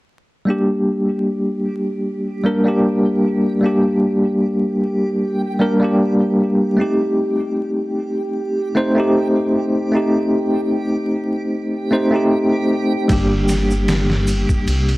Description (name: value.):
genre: trip hop.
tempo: 76 BPM.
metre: 4/4.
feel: swing 54% on 16ths.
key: G minor.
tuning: A4 = 440 Hz.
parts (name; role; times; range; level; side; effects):
bell-like tine electric piano; accompaniment; 0.5-15.0 s; G3 to C5; -16 LUFS; equal; tremolo, tape echo.
backwards swelling texture; texture; 1.5-15.0 s; G4; -28 LUFS; right 4 dB; built-in reverb.
dark detuned saw bass; bass; 13.1-15.0 s; G1 to C2; -19 LUFS; equal; tube saturation.
trip hop sampler-style drum kit; drums; 13.1-15.0 s; kick drum, ride cymbal, snare drum; -21 LUFS; equal; none.
tube shaker; percussion; 13.1-14.8 s; none; -36 LUFS; right 2 dB; none.
room: little or no reverb.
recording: dry, gritty hardware recording, transformer saturation, vinyl crackle.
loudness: -16 LUFS.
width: side -19 dB against mid.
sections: 0.5-15.0 A section.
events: none.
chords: 0.5 Gm; 6.8 Am7b5; 13.1 Gm.